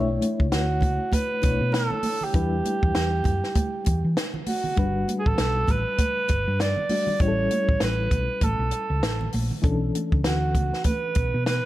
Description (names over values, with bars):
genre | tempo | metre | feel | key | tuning
lush 1970s-style soul | 99 BPM | 4/4 | swing 58% on 16ths | B minor | A4 = 440 Hz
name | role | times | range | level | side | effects
reed electric piano | accompaniment | 0.0-11.7 s | E3 to D5 | -30 LUFS | left 3 dB | fast tremolo
hollow-body short-scale fingered electric bass | bass | 0.0-11.6 s | G1 to E3 | -26 LUFS | equal | none
compact cocktail drum kit | drums | 0.2-11.6 s | hi-hat, kick drum, snare drum | -25 LUFS | equal | none
congas | percussion | 0.2-11.6 s | none | -34 LUFS | right 3 dB | none
breathy alto saxophone | melody | 0.5-11.7 s | F#4 to D5 | -27 LUFS | right 2 dB | none
room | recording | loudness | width
light reverb, small room reverb | dark, warm production | -21 LUFS | side -15 dB against mid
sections
0.0-11.7 A section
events
none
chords
0.0 Bm11; 2.3 Em7; 4.8 Gmaj7; 7.2 A7; 9.6 Bm11